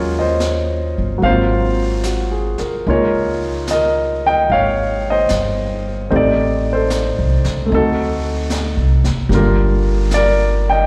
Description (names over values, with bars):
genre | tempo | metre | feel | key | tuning
jazz ballad | 74 BPM | 4/4 | swing 69% on 8ths | unclear | A4 = 440 Hz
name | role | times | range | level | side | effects
warm grand piano | accompaniment | 0.0-10.9 s | D3 to G5 | -19 LUFS | equal | none
upright bass | bass | 0.0-10.9 s | F#1 to Eb2 | -21 LUFS | equal | none
jazz brush drum kit | drums | 0.4-10.9 s | brushed snare drum, hi-hat, snare drum | -32 LUFS | equal | slapback echo
room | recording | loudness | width
studio ambience | live gig heard through the venue's PA, recital hall reverb | -17 LUFS | mono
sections
0.0-10.9 A section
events
none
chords
0.0 Ebm11; 1.2 Ab13; 2.9 Db69; 6.1 Am7b5; 7.7 D7b9; 9.3 Gm7